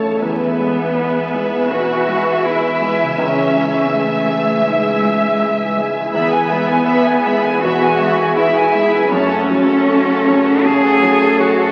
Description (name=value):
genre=cinematic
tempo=81 BPM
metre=4/4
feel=rubato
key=E major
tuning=A4 = 441 Hz
part: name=warm studio violin section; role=melody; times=0.0-11.7 s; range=F#5 to B5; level=-30 LUFS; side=equal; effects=none
part: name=rich studio violin section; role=second line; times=0.0-11.7 s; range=A4 to G#5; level=-22 LUFS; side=equal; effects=none
part: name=felt-muted upright piano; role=accompaniment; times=0.0-11.7 s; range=C#2 to E5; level=-25 LUFS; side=equal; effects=none
part: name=rich studio viola section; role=accompaniment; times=0.0-11.7 s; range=F#4 to E5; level=-26 LUFS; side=equal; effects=none
part: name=mellow French horn section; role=sustained chords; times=0.0-11.7 s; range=C#3 to A4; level=-24 LUFS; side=equal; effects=none
part: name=concert harp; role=arpeggios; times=0.0-11.7 s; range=E2 to E5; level=-26 LUFS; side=equal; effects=none
part: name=rich studio double bass section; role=bass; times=0.0-11.7 s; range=C#2 to F#2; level=-31 LUFS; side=equal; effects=none
part: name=rich cello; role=melody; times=0.2-11.7 s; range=G#3 to G#4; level=-22 LUFS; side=equal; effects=none
part: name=rich studio cello section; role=bass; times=0.2-11.7 s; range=G#3 to G#4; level=-24 LUFS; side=equal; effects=none
room=wet concert hall reverb, RT60 2.6 s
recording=very old 78 rpm record, vinyl crackle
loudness=-15 LUFS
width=mono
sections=0.0-11.7 A section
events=none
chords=0.2 E; 3.2 C#m; 6.1 E; 9.1 F#m